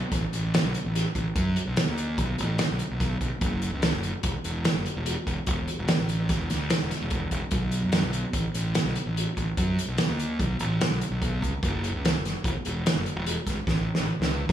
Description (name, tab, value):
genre	math rock and midwest emo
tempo	146 BPM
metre	5/4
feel	straight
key	unclear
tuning	A4 = 440 Hz
part	fuzz fingered electric bass	bass	0.1-14.5 s	E1 to F#2	-28 LUFS	right 1 dB	overdrive
part	loose indie drum kit	drums	0.1-14.5 s	hi-hat, kick drum, snare drum	-27 LUFS	equal	none
room	light reverb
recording	small room reverb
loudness	-24 LUFS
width	side -11 dB against mid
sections	0.0-14.5 A section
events	drum fill 13.7-14.5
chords	none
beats	0.13 0.54 0.95 | 1.36 1.77 2.18 2.59 3.00 | 3.42 3.83 4.24 4.65 5.06 | 5.47 5.88 6.29 6.70 7.11 | 7.52 7.93 8.34 8.75 9.16 | 9.57 9.99 10.40 10.81 11.22 | 11.63 12.04 12.45 12.86 13.27 | 13.68 14.09 14.50